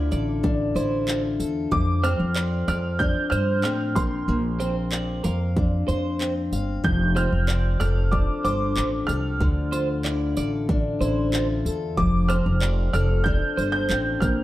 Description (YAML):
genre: acoustic pop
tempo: 94 BPM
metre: 4/4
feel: straight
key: F major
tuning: A4 = 440 Hz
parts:
  - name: warm upright piano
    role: melody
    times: 0.0-14.4 s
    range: C6 to G6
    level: -28 LUFS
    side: right 2 dB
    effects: none
  - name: picked steel-string acoustic guitar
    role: accompaniment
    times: 0.0-14.4 s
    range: D3 to F5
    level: -26 LUFS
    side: left 3 dB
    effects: none
  - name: twelve-string electric guitar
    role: arpeggios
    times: 0.0-14.0 s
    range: Bb4 to D5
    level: -31 LUFS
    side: right 5 dB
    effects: none
  - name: upright bass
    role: bass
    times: 0.0-14.4 s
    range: F1 to A2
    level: -25 LUFS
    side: equal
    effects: none
  - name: house drum kit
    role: drums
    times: 0.1-14.4 s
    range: handclaps, kick drum, tambourine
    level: -27 LUFS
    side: equal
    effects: none
room: light reverb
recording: heard from further back in the room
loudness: -21 LUFS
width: side -15 dB against mid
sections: 0.0-14.4 A section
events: none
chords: 0.0 Dmadd9; 1.7 F6; 4.0 Bbadd9; 6.8 F6; 9.4 Dmadd9; 12.0 F6